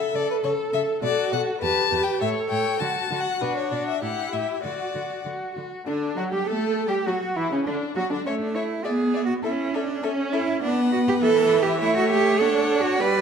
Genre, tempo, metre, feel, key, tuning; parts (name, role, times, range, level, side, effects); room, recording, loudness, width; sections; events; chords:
quick classical-period movement for string quartet; 101 BPM; 2/4; straight; D major; A4 = 440 Hz
rich violin; melody; 0.0-13.2 s; C#4 to A5; -29 LUFS; left 10 dB
warm violin; second line; 0.0-13.2 s; C#4 to D5; -29 LUFS; left 3 dB
warm viola; accompaniment; 0.0-13.2 s; C#3 to A4; -26 LUFS; right 1 dB
rich cello; bass; 0.1-13.2 s; E2 to B4; -25 LUFS; right 5 dB
moderate recital hall reverb, RT60 1.2 s; -21 LUFS; side -7 dB against mid
0.0-5.9 A section; 5.9-13.2 A section
0.0 A/C#; 1.0 Bm7; 1.6 Em; 2.2 A; 2.8 D; 3.4 Bm; 4.0 A5; 4.6 D; 6.5 Gsus2; 7.1 D; 8.3 A; 8.9 E/B (rootless); 9.4 A/C#; 10.6 Bm; 11.2 Em; 11.8 A; 12.4 D